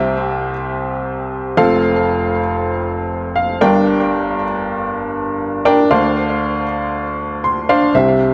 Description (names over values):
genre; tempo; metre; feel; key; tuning
pop; 118 BPM; 4/4; straight; unclear; A4 = 440 Hz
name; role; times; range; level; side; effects
clear upright piano; solo; 0.0-8.3 s; F1 to C6; -17 LUFS; equal; delay
room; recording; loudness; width
moderate large studio reverb, RT60 0.9 s; none; -17 LUFS; mono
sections
0.0-8.0 A section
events
upright piano fill 3.1-3.9, 7.2-8.0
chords
0.0 C; 1.6 F; 3.6 Gm; 5.9 Dm7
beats
0.29 0.80 1.31 | 1.82 2.34 2.85 3.36 | 3.87 4.38 4.89 5.40 | 5.91 6.42 6.93 7.44 | 7.95